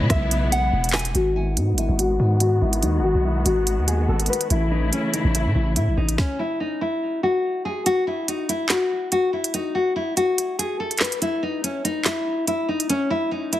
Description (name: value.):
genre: hip hop, drill.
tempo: 143 BPM.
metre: 4/4.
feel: half-time.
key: G# phrygian.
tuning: A4 = 440 Hz.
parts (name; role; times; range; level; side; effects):
nylon-string guitar; melody; 0.0-13.6 s; C#4 to G#5; -23 LUFS; left 2 dB; low-pass filter, digital delay.
warm symphonic string section; sustained chords; 0.0-6.2 s; C#3 to F#4; -27 LUFS; left 1 dB; low-pass filter.
long sustained 808-style bass; bass; 0.0-6.2 s; E1 to A2; -21 LUFS; equal; none.
drill drum kit; drums; 0.1-13.6 s; handclaps, hi-hat, kick drum, rim click, snare drum; -23 LUFS; right 1 dB; none.
room: studio reverb.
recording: heavily compressed radio sound, multiband compression.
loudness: -20 LUFS.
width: side -13 dB against mid.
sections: 0.0-1.1 A section; 1.1-7.9 B section; 7.9-13.6 C section.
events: filter sweep 1.1-7.9; stop 6.2-7.9; kick muted 7.9-13.6.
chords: 0.0 E6; 1.1 G#m7; 4.5 A; 6.2 N.C..